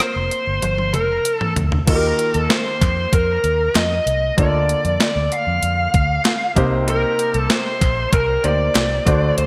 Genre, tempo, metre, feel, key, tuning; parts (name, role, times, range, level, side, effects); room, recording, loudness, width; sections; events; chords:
1980s-style pop; 96 BPM; 4/4; straight; A4 = 440 Hz
bluesy overdriven lead guitar; melody; 0.0-9.5 s; Bb4 to F5; -22 LUFS; equal; distortion
warm grand piano; accompaniment; 0.0-9.5 s; C3 to Eb5; -27 LUFS; equal
clean 12-bit digital drum machine; drums; 0.0-9.5 s; crash cymbal, hi-hat, kick drum, rim click, snare drum, toms; -22 LUFS; equal; overdrive, gated reverb
vintage muted fingered electric bass; bass; 0.2-9.5 s; F1 to F2; -24 LUFS; equal
group handclap; percussion; 2.5-8.9 s; -37 LUFS; equal
moderate lush hall reverb, RT60 1.8 s, digital ambience; bright 1980s-style digital production; -18 LUFS; mono
0.0-1.9 A section; 1.9-9.5 B section
drum fill 0.6-1.9
0.0 Fsus4; 1.9 Ebadd9; 4.4 Bbmaj7/D; 6.6 Cm7